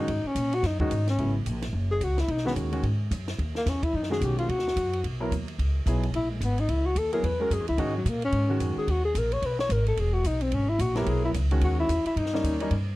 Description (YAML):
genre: jazz, small-group swing and bop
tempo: 219 BPM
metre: 4/4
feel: swing 60% on 8ths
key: G# minor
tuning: A4 = 440 Hz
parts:
  - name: breathy tenor saxophone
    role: melody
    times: 0.0-12.6 s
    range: F#3 to C#5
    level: -28 LUFS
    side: left 2 dB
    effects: none
  - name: warm grand piano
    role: accompaniment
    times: 0.0-8.9, 11.0-12.7 s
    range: C#3 to A#4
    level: -31 LUFS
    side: right 1 dB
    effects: none
  - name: upright bass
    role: bass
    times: 0.0-13.0 s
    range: E1 to A#2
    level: -27 LUFS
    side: equal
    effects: none
  - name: compact cocktail drum kit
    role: drums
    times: 0.1-12.8 s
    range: hi-hat, kick drum, ride cymbal, snare drum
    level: -35 LUFS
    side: equal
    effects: none
room: light reverb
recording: dark, warm production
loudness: -24 LUFS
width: side -18 dB against mid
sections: 0.0-1.2 A section; 1.2-13.0 A section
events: tenor saxophone solo 0.0-13.0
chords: 0.1 G#sus2; 1.2 G#m7; 5.6 C#m9; 7.8 G#m9; 10.0 Emaj7; 12.2 D#7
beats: | 0.09 0.36 0.64 0.91 | 1.19 1.46 1.74 2.01 | 2.29 2.56 2.84 3.11 | 3.39 3.66 3.94 4.21 | 4.49 4.76 5.04 5.32 | 5.59 5.86 6.14 6.41 | 6.69 6.96 7.24 7.51 | 7.78 8.06 8.33 8.61 | 8.88 9.15 9.43 9.70 | 9.97 10.25 10.52 10.79 | 11.07 11.34 11.62 11.89 | 12.16 12.44 12.71